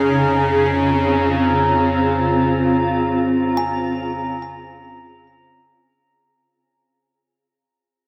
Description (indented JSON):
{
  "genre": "ambient",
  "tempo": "free time",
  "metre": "none",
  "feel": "none",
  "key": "unclear",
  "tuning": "A4 = 440 Hz",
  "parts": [
    { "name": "granular cloud pad", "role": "sustained chords", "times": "0.0-6.1 s", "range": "C4 to Ab4", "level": "-21 LUFS", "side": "equal", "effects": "built-in reverb" },
    { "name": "warm sub bass", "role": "bass", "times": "0.0-6.1 s", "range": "F2", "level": "-31 LUFS", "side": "equal", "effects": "none" },
    { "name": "bowed-like drone", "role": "drone", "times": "0.0-6.2 s", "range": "Db3", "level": "-25 LUFS", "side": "equal", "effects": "built-in reverb, phaser" },
    { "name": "glass harmonica", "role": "texture", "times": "0.0-6.1 s", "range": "Bb5", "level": "-26 LUFS", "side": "equal", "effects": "none" },
    { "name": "kalimba", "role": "arpeggios", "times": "3.6-6.1 s", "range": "Ab5", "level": "-31 LUFS", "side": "equal", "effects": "delay" }
  ],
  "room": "wet huge ambient reverb, RT60 8.3 s",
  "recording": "none",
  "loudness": "-18 LUFS",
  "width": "mono",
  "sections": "0.0-6.1 A section",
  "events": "fade-out on sub bass 0.0-6.1; filter sweep on ambient pad 0.0-6.1; fade-out 1.6-6.1",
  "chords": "0.0 Fm"
}